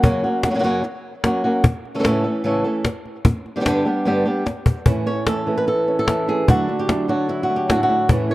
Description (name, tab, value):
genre	flamenco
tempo	149 BPM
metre	4/4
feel	straight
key	unclear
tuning	A4 = 440 Hz
part	flamenco guitar	melody	0.0-8.3 s	F#2 to C#5	-19 LUFS	equal	none
part	cajon	percussion	0.0-8.3 s	none	-17 LUFS	left 1 dB	none
part	flamenco guitar	stabs	4.9-8.3 s	A2 to E4	-25 LUFS	right 4 dB	tape echo
room	moderate spring reverb, RT60 1.9 s, small room ambience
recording	dark, warm production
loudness	-17 LUFS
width	side -17 dB against mid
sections	0.0-4.9 A section; 4.9-8.3 B section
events	drum fill 4.5-4.9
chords	0.0 F#; 1.6 A; 3.3 G; 4.9 A; 6.5 Dadd9